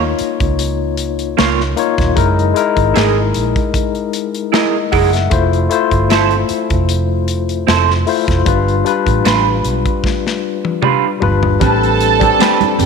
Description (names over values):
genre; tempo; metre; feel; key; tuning
lush 1970s-style soul; 76 BPM; 4/4; swing 54% on 16ths; unclear; A4 = 439 Hz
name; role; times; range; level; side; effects
barky tine electric piano; accompaniment; 0.0-12.9 s; G3 to F#5; -16 LUFS; left 10 dB; medium stereo tremolo
electric guitar through a small old amp; riff; 0.0-12.6 s; G3 to D#5; -17 LUFS; right 13 dB; analog chorus
vintage muted fingered electric bass; bass; 0.0-12.9 s; Eb1 to Eb2; -17 LUFS; right 2 dB; none
modern studio drum kit; drums; 0.2-12.9 s; hi-hat, kick drum, snare drum, toms; -19 LUFS; left 1 dB; none
warm studio violin section; second line; 11.6-12.9 s; G4 to A5; -14 LUFS; right 13 dB; none
congas; percussion; 11.6-12.9 s; none; -20 LUFS; right 14 dB; none
room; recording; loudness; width
moderate echo chamber reverb, RT60 2.0 s; 1960s-style stereo with parts hard left and right; -12 LUFS; side -5 dB against mid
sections
0.0-11.6 A section; 11.6-12.9 B section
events
drum fill 10.0-11.6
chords
0.0 Db69; 2.2 F#13; 5.3 Fmaj7; 8.5 G7; 11.6 Am11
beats
0.59 1.38 | 2.17 2.95 3.74 4.53 | 5.32 6.10 6.89 7.68 | 8.47 9.25 10.04 10.83 | 11.61 12.40